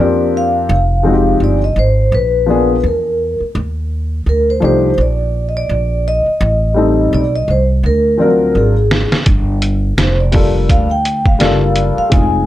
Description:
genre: hip hop, jazz-hop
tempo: 84 BPM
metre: 4/4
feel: swing 58% on 16ths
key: unclear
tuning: A4 = 440 Hz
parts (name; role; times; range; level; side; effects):
- vibraphone with soft mallets; melody; 0.0-12.5 s; Ab4 to Ab5; -16 LUFS; equal; plate reverb
- dark upright piano; accompaniment; 0.0-12.5 s; F3 to A#4; -15 LUFS; left 3 dB; plate reverb
- upright bass; bass; 0.0-12.5 s; F1 to F2; -15 LUFS; equal; none
- trip hop sampler-style drum kit; drums; 8.9-12.3 s; hi-hat, kick drum, snare drum; -14 LUFS; equal; none
room: moderate small room reverb, RT60 0.5 s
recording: none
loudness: -11 LUFS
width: side -14 dB against mid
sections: 0.0-12.5 A section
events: drum fill 7.8-9.3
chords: 0.0 Bb69; 0.7 Fm9; 2.1 Bb7b9; 3.6 Ebmaj7(no3); 6.4 Am7b5; 7.8 D7alt; 9.3 Gm9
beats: | 0.69 1.41 2.12 2.84 | 3.55 4.27 4.98 5.70 | 6.41 7.12 7.84 8.55 | 9.27 9.98 10.70 11.41 | 12.12

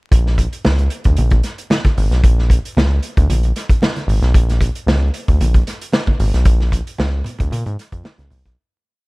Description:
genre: funk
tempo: 114 BPM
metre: 4/4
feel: straight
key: unclear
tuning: A4 = 440 Hz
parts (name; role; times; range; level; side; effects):
- round analog bass; bass; 0.1-8.6 s; Ab1 to Bb2; -15 LUFS; equal; none
- vintage drum kit; drums; 0.1-8.6 s; hi-hat, kick drum, snare drum; -16 LUFS; equal; none
- congas; percussion; 0.6-8.4 s; none; -25 LUFS; right 1 dB; none
room: small room ambience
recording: vinyl crackle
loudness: -14 LUFS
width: side -26 dB against mid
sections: 0.1-8.6 groove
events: fade-out 6.5-8.6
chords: none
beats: | 0.12 0.65 1.17 1.70 | 2.23 2.76 3.29 3.82 | 4.34 4.87 5.40 5.93 | 6.46 6.99 7.52 8.05

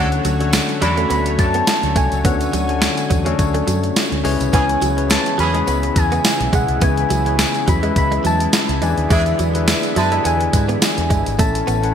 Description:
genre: 1980s-style pop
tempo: 105 BPM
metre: 4/4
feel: swing 55% on 16ths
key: unclear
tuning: A4 = 439 Hz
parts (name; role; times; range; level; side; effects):
- soft struck synth lead; melody; 0.0-11.9 s; E5 to B5; -22 LUFS; left 1 dB; chorus
- bell-like tine electric piano; accompaniment; 0.0-11.9 s; A2 to F#5; -22 LUFS; left 5 dB; none
- warm analog pad; sustained chords; 0.0-11.9 s; C#3 to G#5; -27 LUFS; right 2 dB; chorus, tremolo
- direct-recorded clean electric guitar; riff; 0.0-11.9 s; F#3 to B3; -26 LUFS; right 6 dB; ensemble chorus
- warm horn section; stabs; 0.0-1.0, 4.5-5.6, 9.1-10.1 s; E3 to B4; -28 LUFS; right 1 dB; tube saturation, ping-pong delay
- vintage muted fingered electric bass; bass; 0.0-11.9 s; G1 to G#2; -21 LUFS; equal; none
- clean 12-bit digital drum machine; drums; 0.1-11.9 s; hi-hat, kick drum, snare drum, tambourine; -19 LUFS; equal; gated reverb
- tambourine; percussion; 0.1-11.8 s; none; -34 LUFS; right 8 dB; none
room: moderate lush hall reverb, RT60 2.1 s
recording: bright 1980s-style digital production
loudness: -15 LUFS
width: side -8 dB against mid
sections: 0.0-11.9 A section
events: none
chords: 0.0 Dmaj7; 4.2 C#m7; 8.8 E7; 11.4 A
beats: 0.54 1.11 1.68 | 2.25 2.82 3.39 3.96 | 4.54 5.11 5.68 6.25 | 6.82 7.39 7.96 8.54 | 9.11 9.68 10.25 10.82 | 11.39

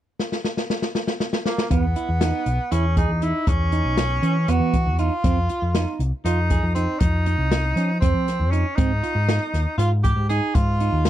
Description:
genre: progressive instrumental, band music in an uneven meter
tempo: 238 BPM (eighths)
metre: 7/8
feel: straight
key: unclear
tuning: A4 = 440 Hz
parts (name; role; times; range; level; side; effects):
- open jazz drum kit; drums; 0.2-11.1 s; hi-hat, kick drum, snare drum; -23 LUFS; left 1 dB; none
- bright tenor saxophone; melody; 1.5-11.1 s; Bb3 to Ab4; -26 LUFS; right 1 dB; none
- semi-hollow electric guitar; arpeggios; 1.7-11.1 s; B3 to G#4; -28 LUFS; right 7 dB; wide subtle chorus
- picked electric bass; bass; 1.7-11.1 s; B1 to F3; -21 LUFS; equal; none
room: small room ambience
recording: dry, close 1970s-style studio recording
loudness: -19 LUFS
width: side -12 dB against mid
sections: 0.0-1.7 A section; 1.7-11.1 B section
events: drum fill 0.2-1.7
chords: 0.0 N.C.; 1.7 Emaj7(no3); 5.2 F7(no3); 8.8 Ab5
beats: 0.19 0.44 0.70 0.95 1.20 1.45 | 1.71 1.96 2.21 2.46 2.72 2.97 3.22 | 3.48 3.73 3.98 4.23 4.49 4.74 4.99 | 5.24 5.50 5.75 6.00 6.25 6.51 6.76 | 7.01 7.26 7.52 7.77 8.02 8.28 8.53 | 8.78 9.03 9.29 9.54 9.79 10.04 10.30 | 10.55 10.80 11.06

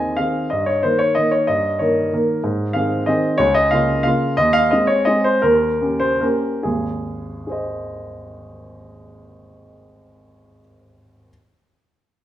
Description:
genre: classical, piano waltz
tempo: 134-198 BPM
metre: 3/4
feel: rubato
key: Ab major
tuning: A4 = 440 Hz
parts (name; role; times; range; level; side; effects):
- warm grand piano; solo; 0.0-11.3 s; Ab1 to Ab5; -16 LUFS; equal; none
room: wet large studio reverb, RT60 1.2 s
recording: heard from further back in the room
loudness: -16 LUFS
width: side -12 dB against mid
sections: 0.0-6.7 A section; 6.7-9.1 B section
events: slowing down 3.9-6.7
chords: 0.0 Ab; 0.5 Eb7/G; 2.4 Ab; 3.4 Bbm/Db; 4.4 Ab/Eb; 5.4 Eb7; 6.7 Ab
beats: 0.18 | 0.50 0.83 1.15 | 1.48 1.80 2.13 | 2.44 2.75 3.08 | 3.40 3.72 4.05 | 4.38 4.72 5.08 | 5.44 5.82 6.22 | 6.65 7.06 7.48 | 7.89 8.30 8.72

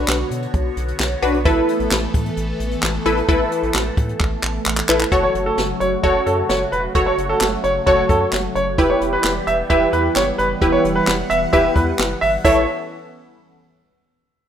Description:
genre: synth-pop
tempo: 131 BPM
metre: 4/4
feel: straight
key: A mixolydian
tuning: A4 = 441 Hz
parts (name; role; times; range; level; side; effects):
- funky polysynth comp; accompaniment; 0.0-12.7 s; D4 to C#5; -19 LUFS; equal; chorus
- phased analog pad; sustained chords; 0.0-12.7 s; C#3 to F#5; -26 LUFS; equal; phaser, chorus
- round analog bass; bass; 0.0-12.7 s; E1 to B2; -26 LUFS; equal; none
- jazz brush drum kit; drums; 0.1-12.6 s; crash cymbal, handclaps, hi-hat, kick drum, snare drum; -21 LUFS; equal; none
- clear concert grand piano; second line; 5.2-12.7 s; A4 to E5; -19 LUFS; right 1 dB; digital delay
room: moderate digital room reverb, RT60 1.1 s, small room reverb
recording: rough home demo mix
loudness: -16 LUFS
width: side -9 dB against mid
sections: 0.0-5.1 A section; 5.1-12.4 B section; 12.4-14.3 C section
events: drum fill 4.2-5.1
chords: 0.0 Bmadd9; 1.5 Asus2; 5.1 F#m; 8.8 Em; 12.4 Aadd9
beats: 0.08 0.54 1.00 | 1.45 1.91 2.37 2.83 | 3.29 3.74 4.20 4.66 | 5.12 5.58 6.03 6.49 | 6.95 7.41 7.87 8.32 | 8.78 9.24 9.70 10.16 | 10.61 11.07 11.53 11.99 | 12.45

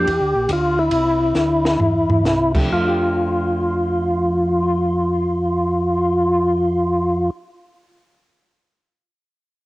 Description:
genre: soul jazz organ trio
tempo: 126-146 BPM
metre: 4/4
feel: swing 65% on 8ths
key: F major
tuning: A4 = 441 Hz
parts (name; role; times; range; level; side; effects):
- percussive tonewheel organ; melody; 0.0-7.3 s; E4 to G4; -18 LUFS; equal; overdrive, chorus vibrato, slow rotary speaker, cassette tape
- vintage hollow-body jazz guitar; accompaniment; 0.0-7.7 s; F3 to G4; -27 LUFS; right 1 dB; cassette tape
- tonewheel organ; bass; 0.0-7.3 s; Bb1 to F2; -23 LUFS; equal; slow rotary speaker
- compact cocktail drum kit; drums; 0.1-2.6 s; crash cymbal, hi-hat, kick drum, ride cymbal, snare drum, toms; -24 LUFS; equal; cassette tape
room: light reverb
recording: home recording on cassette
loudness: -16 LUFS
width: side -18 dB against mid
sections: 0.0-2.7 A section; 2.7-6.5 B section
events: slowing down 0.0-2.7; drum fill 1.3-2.2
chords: 0.0 Gm7; 0.9 Cadd9; 2.7 F69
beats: 0.07 0.49 | 0.91 1.35 1.79 2.25 | 2.72 3.19 3.67 4.15 | 4.63 5.11 5.58 6.06

